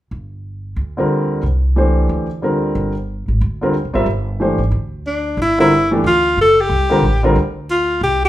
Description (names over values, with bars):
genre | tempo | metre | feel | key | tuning
modal jazz | 182 BPM | 4/4 | swing 62% on 8ths | G minor | A4 = 442 Hz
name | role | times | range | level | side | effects
upright bass | bass | 0.1-8.3 s | F#1 to D2 | -20 LUFS | equal | none
warm concert grand piano | accompaniment | 1.0-7.4 s | D3 to E5 | -17 LUFS | equal | none
clear alto saxophone | melody | 5.1-8.3 s | D4 to A4 | -14 LUFS | left 1 dB | none
room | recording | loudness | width
moderate large studio reverb, RT60 0.8 s | band playing live in one room | -14 LUFS | side -14 dB against mid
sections
0.1-5.4 A section; 5.4-8.3 B section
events
none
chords
0.1 G13sus4; 5.4 G9sus4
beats
| 0.12 0.45 0.78 1.10 | 1.43 1.76 2.09 2.42 | 2.75 3.08 3.41 3.74 | 4.07 4.40 4.72 5.05 | 5.38 5.71 6.04 6.37 | 6.70 7.03 7.36 7.68 | 8.01